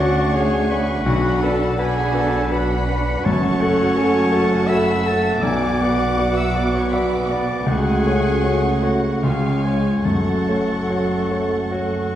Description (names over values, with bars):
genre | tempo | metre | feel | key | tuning
classical, romantic movement for piano and orchestra | 65-85 BPM | 3/4 | rubato | F# minor | A4 = 438 Hz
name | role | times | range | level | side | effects
clear grand piano | melody | 0.0-12.2 s | B1 to D5 | -21 LUFS | left 1 dB | none
rich studio violin section | melody | 0.0-12.1 s | E#5 to E6 | -34 LUFS | left 2 dB | none
bright clarinet | second line | 0.0-12.1 s | E#4 to E5 | -26 LUFS | left 2 dB | none
bright oboe | second line | 0.0-12.2 s | F#4 to B5 | -29 LUFS | right 1 dB | none
warm studio violin section | second line | 0.0-12.2 s | F#5 to D6 | -30 LUFS | left 1 dB | none
warm studio viola section | accompaniment | 0.0-12.2 s | G#3 to A4 | -26 LUFS | right 2 dB | none
warm French horn section | sustained chords | 0.0-12.2 s | F#3 to F#4 | -27 LUFS | left 1 dB | none
warm studio cello section | bass | 0.0-12.2 s | D2 to C#3 | -27 LUFS | right 2 dB | none
warm studio double bass section | bass | 0.0-12.2 s | F#1 to D2 | -28 LUFS | right 2 dB | none
timpani | percussion | 3.3-4.3 s | F#2 | -34 LUFS | equal | none
room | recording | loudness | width
wet recital hall reverb, RT60 1.4 s | heard from further back in the room | -17 LUFS | side -11 dB against mid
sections
0.0-12.2 A section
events
none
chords
0.0 Dmaj7; 1.1 Bm; 3.2 F#m; 5.4 Bm; 7.7 F#m/C#; 9.2 C#; 10.0 F#m